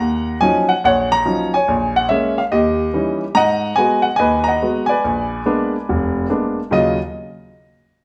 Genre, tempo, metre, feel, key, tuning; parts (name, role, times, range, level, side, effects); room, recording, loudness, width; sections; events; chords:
solo jazz; 143 BPM; 4/4; swing 66% on 8ths; Eb minor; A4 = 440 Hz
clear grand piano; solo; 0.0-7.0 s; F1 to Bb5; -17 LUFS; equal
moderate large studio reverb, RT60 1.2 s; band playing live in one room; -17 LUFS; mono
0.0-3.4 A section; 3.4-6.7 B section; 6.7-8.0 C section
0.0 Ebm9; 1.7 Bbm7b5; 2.5 Eb7b9; 3.4 Abm7; 5.0 Bb7b9; 6.7 Ebm9